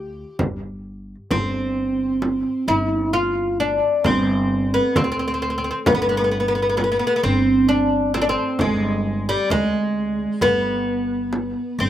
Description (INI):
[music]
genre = Turkish makam ensemble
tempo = 132 BPM (eighths)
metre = 10/8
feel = straight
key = G makam hicaz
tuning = A4 = 440 Hz
[part]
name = oud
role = melody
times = 0.0-11.9 s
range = G3 to G4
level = -19 LUFS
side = equal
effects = slapback echo
[part]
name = upright bass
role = bass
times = 0.0-11.9 s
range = G1 to D2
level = -26 LUFS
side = equal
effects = none
[part]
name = frame drum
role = percussion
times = 0.4-11.5 s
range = none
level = -23 LUFS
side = equal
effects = none
[sound]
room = light reverb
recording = recorded outdoors, with no room sound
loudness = -18 LUFS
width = side -11 dB against mid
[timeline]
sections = 0.0-1.3 A section; 1.3-11.9 B section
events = none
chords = none